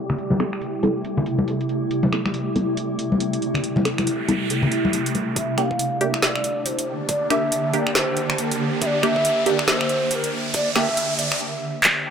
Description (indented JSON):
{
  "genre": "deep dubstep",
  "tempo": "139 BPM",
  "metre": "4/4",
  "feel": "swing 60% on 16ths, half-time",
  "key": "G dorian",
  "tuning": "A4 = 440 Hz",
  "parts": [
    { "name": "granular cloud pad", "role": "sustained chords", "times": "0.0-11.4 s", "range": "C3 to G4", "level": "-26 LUFS", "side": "equal", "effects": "built-in reverb" },
    { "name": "wind-like tuned noise texture", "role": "texture", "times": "0.0-11.4 s", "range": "G3 to D5", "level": "-32 LUFS", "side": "equal", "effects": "built-in reverb" },
    { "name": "garage drum kit", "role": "drums", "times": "0.1-11.9 s", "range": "finger snaps, handclaps, hi-hat, snare drum", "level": "-22 LUFS", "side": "equal", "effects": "overdrive" },
    { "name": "congas", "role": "percussion", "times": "0.1-5.3 s", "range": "none", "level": "-24 LUFS", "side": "left 2 dB", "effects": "none" },
    { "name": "filtered dub chord stab", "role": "stabs", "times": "0.4-10.9 s", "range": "Bb3 to A4", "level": "-26 LUFS", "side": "right 2 dB", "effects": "phaser, dub echo" },
    { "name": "noise sweep and riser", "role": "sound effects", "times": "3.9-11.4 s", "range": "none", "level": "-29 LUFS", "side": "right 2 dB", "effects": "none" },
    { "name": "breathy low ney", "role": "melody", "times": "5.4-11.4 s", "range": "Bb4 to G5", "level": "-24 LUFS", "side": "equal", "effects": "low-pass filter, dub echo" },
    { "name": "electronic kick drum", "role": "drums", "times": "5.4-11.0 s", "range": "none", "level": "-30 LUFS", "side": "equal", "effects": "overdrive, high-pass filter on kick" }
  ],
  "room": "moderate spring reverb, RT60 1.7 s",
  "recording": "low-pass filter",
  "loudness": "-19 LUFS",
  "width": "side -7 dB against mid",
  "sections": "0.0-5.4 A section; 5.4-12.1 B section",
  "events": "filter sweep on ambient pad 0.0-5.4; filter sweep 0.0-5.4; noise sweep 3.9-5.4; build-up 5.4-12.1; riser 5.4-11.4; filter sweep on ney 5.4-12.1; drum fill 11.8",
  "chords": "0.0 Am; 5.4 Gm"
}